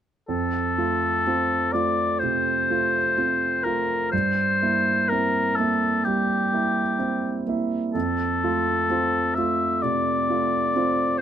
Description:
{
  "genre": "classical, romantic duo for oboe and grand piano",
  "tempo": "63 BPM",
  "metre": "4/4",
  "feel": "rubato",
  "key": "F major",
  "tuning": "A4 = 440 Hz",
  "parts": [
    { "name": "warm oboe", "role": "melody", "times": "0.3-11.2 s", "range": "G4 to E5", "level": "-23 LUFS", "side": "left 3 dB", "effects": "none" },
    { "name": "warm concert grand piano", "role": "accompaniment", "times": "0.3-11.2 s", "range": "F2 to F4", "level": "-24 LUFS", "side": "right 4 dB", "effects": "none" }
  ],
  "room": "light reverb",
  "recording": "close, detailed microphones",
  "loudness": "-21 LUFS",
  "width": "side -9 dB against mid",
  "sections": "0.3-11.2 A section",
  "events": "none",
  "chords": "0.3 F; 4.1 C7/G; 7.9 F",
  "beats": "| 0.27 1.25 2.21 3.16 | 4.12 5.11 6.05 6.98 | 7.94 8.88 9.81 10.73"
}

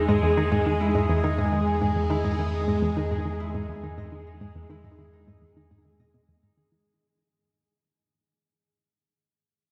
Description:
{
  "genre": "ambient, sequencer-driven space music",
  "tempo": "104 BPM",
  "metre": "4/4",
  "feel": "straight",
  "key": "E major",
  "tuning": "A4 = 439 Hz",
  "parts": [
    { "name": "phased string machine", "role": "sustained chords", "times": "0.0-6.8 s", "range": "G#3", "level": "-30 LUFS", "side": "equal", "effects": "ensemble chorus, phaser, shimmer reverb" },
    { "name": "Celtic harp", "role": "arpeggios", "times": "0.0-9.1 s", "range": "C#4 to D#5", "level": "-39 LUFS", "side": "equal", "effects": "tape echo, shimmer reverb" },
    { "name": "warm sub bass", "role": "bass", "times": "0.0-6.8 s", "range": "E2", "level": "-32 LUFS", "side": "equal", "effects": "none" },
    { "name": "bubbling stepped-filter texture", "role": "texture", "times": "0.0-6.9 s", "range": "G#4", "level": "-34 LUFS", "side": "equal", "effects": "chorus, built-in reverb, shimmer reverb" },
    { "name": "analog pluck", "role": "riff", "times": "0.1-6.8 s", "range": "E2 to E3", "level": "-30 LUFS", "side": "equal", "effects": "chorus, tape echo" }
  ],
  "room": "wet huge ambient reverb, RT60 8.8 s",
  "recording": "in a vast, echoing space",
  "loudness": "-25 LUFS",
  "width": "mono",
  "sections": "0.0-6.9 A section",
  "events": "fade-out on harp 0.0-6.9; fade-out 0.0-6.9; filter sweep on synth arpeggio sound 0.0-6.9",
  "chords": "0.0 Emaj7",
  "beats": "0.52 1.09 1.67 | 2.25 2.83 3.40 3.98 | 4.55 5.13 5.71 6.29"
}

